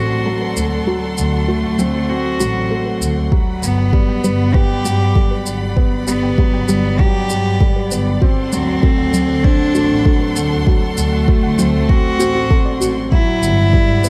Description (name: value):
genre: piano and strings electronica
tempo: 98 BPM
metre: 4/4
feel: straight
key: G major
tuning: A4 = 443 Hz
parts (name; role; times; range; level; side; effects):
- rich cello; melody; 0.0-14.1 s; A3 to G4; -22 LUFS; equal; low-pass filter
- rich studio string section; sustained chords; 0.0-14.1 s; A4 to C6; -31 LUFS; equal; sidechain pumping
- felt-muted upright piano; riff; 0.0-14.1 s; F#3 to C4; -23 LUFS; equal; none
- dark studio double bass section; bass; 0.0-14.1 s; G1 to G2; -23 LUFS; equal; tube saturation, sidechain pumping
- soft round pluck; arpeggios; 0.3-12.9 s; F#3 to G5; -27 LUFS; equal; chorus, sidechain pumping, tape echo
- shaker; drums; 0.6-14.1 s; none; -28 LUFS; equal; high-pass filter on perc, high-pass filter on room
- electronic kick drum; drums; 3.3-13.9 s; none; -16 LUFS; equal; none
room: light reverb, small room reverb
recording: none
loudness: -16 LUFS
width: mono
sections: 0.0-13.1 A section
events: build-up 0.0-13.1; filter sweep on synth arpeggio sound 0.0-13.1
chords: 0.0 D7; 3.3 Gmaj7; 8.2 D7; 13.1 Gmaj7